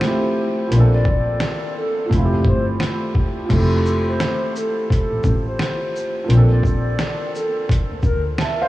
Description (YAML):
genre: lo-fi hip hop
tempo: 86 BPM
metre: 4/4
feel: swing 59% on 16ths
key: F major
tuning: A4 = 442 Hz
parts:
  - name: hollow clarinet-like synth lead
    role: melody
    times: 0.0-8.2 s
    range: A4 to D5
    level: -25 LUFS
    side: left 1 dB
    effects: chorus, diffuse ambient delay
  - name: felt-muted upright piano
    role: accompaniment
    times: 0.0-8.7 s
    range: F3 to A5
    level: -23 LUFS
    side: right 1 dB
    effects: none
  - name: lo-fi sampler-style drum kit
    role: drums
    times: 0.0-8.6 s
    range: crash cymbal, hi-hat, kick drum, shaker, snare drum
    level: -22 LUFS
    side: equal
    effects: overdrive
  - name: dark double bass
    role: bass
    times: 0.7-8.4 s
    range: F1 to D2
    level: -18 LUFS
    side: equal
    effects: none
room: light reverb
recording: small room ambience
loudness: -16 LUFS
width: side -16 dB against mid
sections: 0.0-3.5 A section; 3.5-8.7 A section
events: none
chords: 0.0 Fmaj9; 0.7 Bbmaj7; 2.1 Fmaj9; 6.3 Bbmaj7